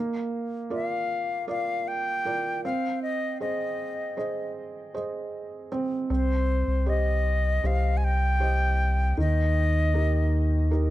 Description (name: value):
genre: pop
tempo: 78 BPM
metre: 4/4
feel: straight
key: C minor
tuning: A4 = 440 Hz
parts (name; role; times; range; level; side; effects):
- felt-muted upright piano; accompaniment; 0.0-10.9 s; Eb3 to Eb5; -30 LUFS; right 3 dB; none
- bright reedy concert flute; melody; 0.7-10.7 s; C5 to Ab5; -29 LUFS; left 1 dB; tape echo
- warm sub bass; bass; 6.1-10.9 s; C2 to Eb2; -23 LUFS; left 1 dB; none
room: small room ambience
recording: dry, close 1970s-style studio recording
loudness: -24 LUFS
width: side -15 dB against mid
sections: 0.0-10.9 A section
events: none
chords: 0.0 Bb; 2.6 Ab/C; 6.1 Cm; 9.2 Eb